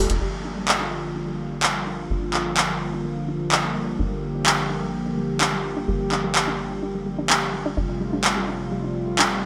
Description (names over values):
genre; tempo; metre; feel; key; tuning
melodic techno; 127 BPM; 4/4; straight; G minor; A4 = 440 Hz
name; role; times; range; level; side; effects
warm analog pad; sustained chords; 0.0-9.5 s; C3 to G4; -29 LUFS; equal; chorus
analog pluck; arpeggios; 0.0-9.5 s; G3 to D4; -34 LUFS; equal; chorus, digital delay
tight sequencer bass; bass; 0.0-9.5 s; F1 to G1; -36 LUFS; equal; none
punchy analog drum machine; drums; 0.1-9.3 s; handclaps, hi-hat; -24 LUFS; equal; none
room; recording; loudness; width
light reverb, digital ambience; none; -24 LUFS; mono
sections
0.2-9.5 A section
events
none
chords
0.2 Gm7; 7.8 Fadd9/G